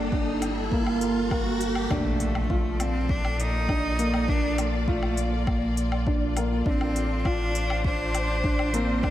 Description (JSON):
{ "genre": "piano and strings electronica", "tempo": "101 BPM", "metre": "4/4", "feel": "straight", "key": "unclear", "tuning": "A4 = 440 Hz", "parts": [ { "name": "bright cello", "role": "melody", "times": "0.0-9.1 s", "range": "A3 to Eb4", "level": "-30 LUFS", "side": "equal", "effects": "diffuse ambient delay" }, { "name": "dark studio string section", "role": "sustained chords", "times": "0.0-9.1 s", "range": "Bb2 to D5", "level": "-34 LUFS", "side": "left 2 dB", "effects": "sidechain pumping" }, { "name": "warm sub bass", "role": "bass", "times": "0.0-9.1 s", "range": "G1 to Bb1", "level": "-29 LUFS", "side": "equal", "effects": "sidechain pumping" }, { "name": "riser and impact", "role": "sound effects", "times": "0.0-4.3 s", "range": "none", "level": "-33 LUFS", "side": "equal", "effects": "none" }, { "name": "felt-muted upright piano", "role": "riff", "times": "0.1-9.1 s", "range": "Bb3 to F4", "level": "-29 LUFS", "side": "right 1 dB", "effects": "diffuse ambient delay" }, { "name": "electronic kick drum", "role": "drums", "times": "0.1-9.1 s", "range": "none", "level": "-28 LUFS", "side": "equal", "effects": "none" }, { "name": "electronic hi-hat and woodblock", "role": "drums", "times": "0.4-9.1 s", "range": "none", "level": "-38 LUFS", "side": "left 2 dB", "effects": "none" } ], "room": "wet lush hall reverb, RT60 2.4 s", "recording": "dreamy mix soaked in reverb", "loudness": "-23 LUFS", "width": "side -13 dB against mid", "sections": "0.0-1.9 A section; 1.9-9.1 B section", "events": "build-up 0.0-1.9; riser 0.0-1.9; drop 1.9-9.1; impact 1.9-4.3", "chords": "0.0 Gm9; 1.9 Bbmaj7; 6.7 Dm7/A" }